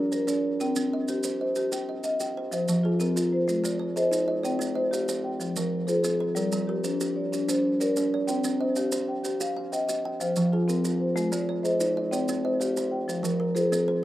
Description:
southern african traditional, mbira-style interlocking cycle; 125 BPM (dotted quarters); 12/8; straight; F equiheptatonic; A4 = 440 Hz
kalimba; arpeggios; 0.0-14.0 s; F3 to G5-29c; -28 LUFS; right 2 dB
marimba with soft mallets; arpeggios; 0.0-14.0 s; F3 to G5-29c; -27 LUFS; left 2 dB
maracas; percussion; 0.1-13.9 s; -37 LUFS; right 4 dB
light reverb; recorded outdoors, with no room sound; -24 LUFS; side -14 dB against mid
0.0-2.5 A section; 2.5-14.0 B section
0.0 Gm (rootless); 0.6 Cm; 2.5 Fm; 3.5 Ab; 4.4 Cm; 5.4 Fm; 6.4 Gm; 8.3 Cm; 10.2 Fm; 11.2 Ab; 12.1 Cm; 13.1 Fm

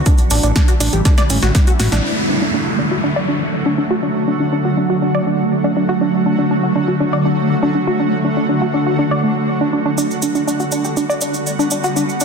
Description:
progressive house; 121 BPM; 4/4; straight; D major; A4 = 439 Hz
shimmering ambient pad; sustained chords; 0.0-12.2 s; D3 to F#4; -18 LUFS; right 1 dB; chorus, built-in reverb, sidechain pumping
fat analog bass; bass; 0.0-2.0 s; A1; -16 LUFS; equal; sidechain pumping
tight sequenced synth; arpeggios; 0.1-12.2 s; A3 to D5; -19 LUFS; equal; chorus, sidechain pumping, tape echo
deep house drum kit; drums; 0.1-2.1 s; crash cymbal, hi-hat, snare drum; -22 LUFS; equal; overdrive, low-pass filter on hats, low-pass filter on snare, low-pass filter on cymbals
electronic kick drum; drums; 0.1-1.6 s; -12 LUFS; equal; overdrive
cabasa; percussion; 0.1-2.0, 10.0-12.2 s; -25 LUFS; right 4 dB
congas; percussion; 0.9-1.4 s; -26 LUFS; right 10 dB
downlifter; sound effects; 2.0-6.0 s; -23 LUFS; right 1 dB
moderate digital room reverb, RT60 1.1 s, digital ambience; dense, heavily limited modern master; -14 LUFS; side -5 dB against mid
0.0-2.0 A section; 2.0-12.2 B section
filter sweep on synth arpeggio sound 0.0-2.0, 2.0-12.2; drum fill 1.1-2.0; band accent 1.9
0.1 A7sus4; 2.0 D; 10.0 Gmaj7/D

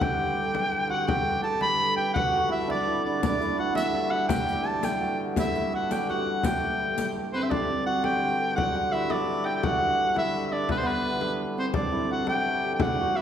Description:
medieval dance; 113 BPM (dotted quarters); 6/8; straight; G major; A4 = 440 Hz
bright shawm; melody; 0.0-13.2 s; B4 to B5; -27 LUFS; equal
hammered dulcimer; second line; 0.0-13.2 s; B3 to B4; -29 LUFS; right 2 dB; slapback echo
dark hurdy-gurdy; drone; 0.0-13.2 s; G2 to D3; -33 LUFS; left 1 dB
frame drum; percussion; 0.0-13.0 s; -32 LUFS; left 2 dB
riq; percussion; 3.2-7.1 s; -34 LUFS; left 2 dB
wet recital hall reverb, RT60 1.8 s; heard from further back in the room; -24 LUFS; side -9 dB against mid
0.0-7.5 A section; 7.5-13.2 B section

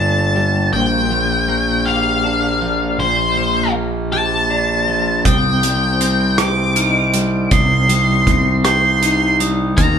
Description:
post-rock; 53 BPM (dotted quarters); 6/8; straight; A4 = 438 Hz
octave-fuzz lead guitar; melody; 0.0-10.0 s; C5 to D6; -17 LUFS; left 1 dB; distortion
twelve-string electric guitar; arpeggios; 0.0-10.0 s; Bb2 to A4; -21 LUFS; left 2 dB; tremolo
fuzz picked electric bass; bass; 0.0-10.0 s; G1 to Eb2; -19 LUFS; right 1 dB; overdrive
glockenspiel with brass mallets; arpeggios; 5.3-10.0 s; Eb6 to G6; -26 LUFS; right 1 dB
loose indie drum kit; drums; 5.3-10.0 s; hi-hat, kick drum, rim click; -19 LUFS; right 1 dB
moderate large studio reverb, RT60 1.2 s; band playing live in one room; -13 LUFS; side -7 dB against mid
0.0-10.0 A section
0.0 Gmadd9; 0.7 Bb6; 5.3 Cm

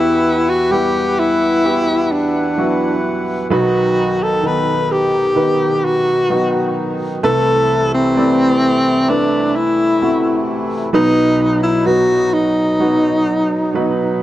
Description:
pop ballad; 64 BPM; 4/4; straight; A4 = 440 Hz
breathy alto saxophone; melody; 0.0-14.2 s; C4 to B4; -15 LUFS; left 1 dB
warm baby grand piano; accompaniment; 0.0-14.2 s; B1 to D5; -18 LUFS; right 2 dB
hand-pumped harmonium; sustained chords; 0.0-14.2 s; C3 to F#5; -24 LUFS; left 1 dB
light reverb, small room ambience; -13 LUFS; side -14 dB against mid
0.0-14.2 A section
0.0 Emadd9; 3.5 B; 7.2 Amadd9/C; 10.9 B

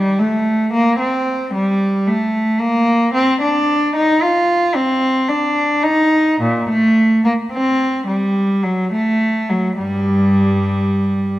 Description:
classical, baroque-style suite movement for unaccompanied cello; 52-57 BPM; 3/4; rubato; G minor; A4 = 440 Hz
rich cello; solo; 0.0-11.4 s; G2 to F4; -14 LUFS; equal
wet recital hall reverb, RT60 1.7 s; -14 LUFS; side -15 dB against mid
0.0-11.4 A section

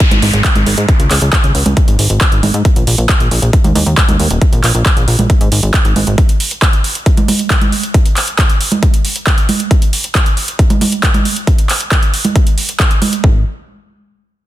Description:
uplifting trance; 136 BPM; 4/4; straight; A4 = 440 Hz
big-room dance drum kit; drums; 0.0-13.2 s; congas, handclaps, hi-hat; -15 LUFS; right 2 dB; overdrive, studio reverb
electronic kick drum; drums; 0.0-13.3 s; -11 LUFS; equal; overdrive, studio reverb
downlifter; sound effects; 0.0-2.6 s; -21 LUFS; equal
plucky analog bass; bass; 0.1-6.2, 13.2-13.4 s; D#1 to G#2; -13 LUFS; equal; sidechain pumping
little or no reverb; dense, heavily limited modern master; -10 LUFS; side -14 dB against mid
0.0-13.2 A section; 13.2-14.5 B section

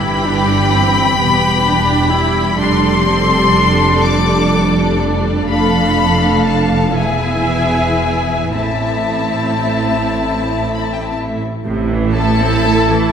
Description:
classical, slow romantic movement for string orchestra; 37-44 BPM (dotted quarters); 6/8; rubato; A minor; A4 = 442 Hz
rich chamber violin section; melody; 0.0-13.1 s; G5 to D6; -18 LUFS; left 4 dB
rich chamber violin section; second line; 0.0-13.1 s; E4 to G5; -20 LUFS; left 2 dB
rich chamber viola section; accompaniment; 0.0-13.1 s; C3 to E4; -18 LUFS; right 2 dB
rich chamber double bass section; bass; 0.0-12.9 s; E1 to A1; -20 LUFS; right 2 dB
rich symphonic cello section; bass; 0.0-12.9 s; E2 to A2; -20 LUFS; right 2 dB
wet concert hall reverb, RT60 2.2 s; recorded in a church or concert hall; -12 LUFS; side -8 dB against mid
0.0-11.6 A section; 11.6-13.1 B section
0.0 Em/G; 2.6 Dm/F; 5.5 Bm7b5/F; 7.0 E; 8.5 Am

